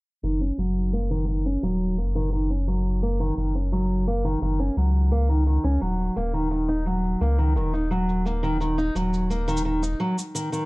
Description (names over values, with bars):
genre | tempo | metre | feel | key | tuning
folktronica | 86 BPM | 4/4 | straight | F# major | A4 = 440 Hz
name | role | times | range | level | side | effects
fingerpicked steel-string acoustic guitar | arpeggios | 0.2-10.7 s | D#3 to D#4 | -25 LUFS | right 1 dB | low-pass filter, digital delay
warm sub bass | bass | 0.2-9.9 s | D#1 to C#2 | -24 LUFS | equal | none
shaker | drums | 0.2-10.7 s | none | -38 LUFS | right 1 dB | none
room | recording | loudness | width
moderate studio reverb, RT60 0.6 s | dark, warm production, low-pass filter | -22 LUFS | side -23 dB against mid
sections
0.2-10.7 A section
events
filter sweep on sub bass 0.2-10.7; filter sweep on steel-string acoustic guitar 0.2-10.7; filter sweep 0.2-10.7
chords
0.2 F#6